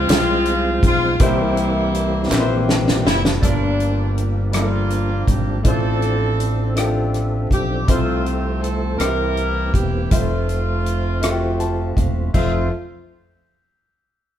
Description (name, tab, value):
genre	slow gospel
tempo	54 BPM (dotted quarters)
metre	6/8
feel	straight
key	F major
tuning	A4 = 436 Hz
part	bright saxophone section	melody	0.0-12.7 s	F3 to Bb4	-23 LUFS	left 1 dB	none
part	clear grand piano	accompaniment	0.0-12.7 s	F2 to A5	-25 LUFS	left 2 dB	none
part	percussive tonewheel organ	sustained chords	0.0-12.7 s	E3 to C5	-26 LUFS	right 2 dB	slow rotary speaker, overdrive, chorus vibrato
part	fingered electric bass	bass	0.0-12.7 s	E1 to C2	-21 LUFS	equal	none
part	natural country drum kit	drums	0.1-12.5 s	crash cymbal, hi-hat, kick drum, rim click, snare drum	-20 LUFS	equal	none
part	group handclap	percussion	0.1-2.7 s	none	-30 LUFS	right 2 dB	none
room	light reverb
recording	band playing live in one room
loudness	-16 LUFS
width	side -10 dB against mid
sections	0.0-3.4 A section; 3.4-12.3 B section; 12.3-14.4 C section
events	drum fill 2.3-3.4; grand piano fill 11.2-12.3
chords	0.0 Dbmaj7; 1.2 C7; 3.4 Gm7; 5.7 F6/A; 7.9 F/C; 9.0 C7; 10.1 Fmaj7